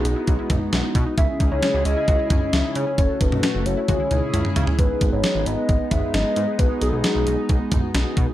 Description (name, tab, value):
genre	synth-pop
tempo	133 BPM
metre	4/4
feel	straight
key	C# minor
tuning	A4 = 440 Hz
part	hollow clarinet-like synth lead	melody	0.0-7.7 s	G#4 to E5	-25 LUFS	left 1 dB	chorus, slapback echo
part	mellow synth brass	accompaniment	0.0-8.3 s	G#3 to B4	-28 LUFS	right 2 dB	chorus
part	chorused pulse-width pad	sustained chords	0.0-8.3 s	C#3 to G#4	-29 LUFS	left 2 dB	wide subtle chorus
part	wide unison pluck	arpeggios	0.0-4.8 s	C#4 to F#4	-31 LUFS	left 3 dB	slapback echo
part	chorused synth bass	bass	0.0-8.3 s	F#1 to C#3	-24 LUFS	equal	none
part	clean 12-bit digital drum machine	drums	0.1-8.3 s	hi-hat, kick drum, snare drum, toms	-22 LUFS	equal	none
room	little or no reverb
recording	none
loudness	-18 LUFS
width	side -14 dB against mid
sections	0.0-4.8 A section; 4.8-8.3 A section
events	drum fill 3.9-4.8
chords	0.0 B6; 1.2 C#m; 3.0 F#m; 3.9 C#m; 4.8 G#m; 6.6 B6